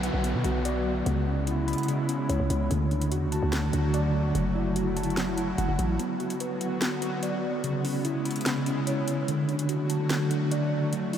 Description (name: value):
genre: hip hop, trap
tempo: 146 BPM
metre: 4/4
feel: half-time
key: unclear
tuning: A4 = 442 Hz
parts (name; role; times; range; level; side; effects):
- airy breathy pad; sustained chords; 0.0-11.2 s; C#3 to F#4; -32 LUFS; left 1 dB; chorus
- mellow tine electric piano; arpeggios; 0.0-11.2 s; C#3 to B5; -28 LUFS; right 1 dB; medium stereo tremolo, low-pass filter, diffuse ambient delay
- growling 808-style bass; bass; 0.0-6.0 s; F#1 to B2; -28 LUFS; equal; none
- trap drum kit; drums; 0.0-11.2 s; hi-hat, snare drum; -35 LUFS; left 1 dB; none
- downlifter and swell; sound effects; 0.0-6.0 s; none; -42 LUFS; left 1 dB; none
room: wet huge ambient reverb, RT60 7.9 s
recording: dreamy mix soaked in reverb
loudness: -25 LUFS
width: side -9 dB against mid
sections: 0.0-6.0 A section; 6.0-11.2 B section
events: swell 4.4-6.0; kick muted 6.0-11.2; filter sweep on tine electric piano 6.0-11.2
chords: 0.0 Bm; 1.1 C#m7; 2.7 D; 4.4 F#m7; 6.0 Bm; 7.6 C#m7; 9.3 D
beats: 0.24 0.65 | 1.06 1.47 1.89 2.30 | 2.71 3.12 3.53 3.94 | 4.35 4.76 5.17 5.58 | 5.99 6.41 6.82 7.23 | 7.64 8.05 8.46 8.87 | 9.28 9.69 10.10 10.52 | 10.93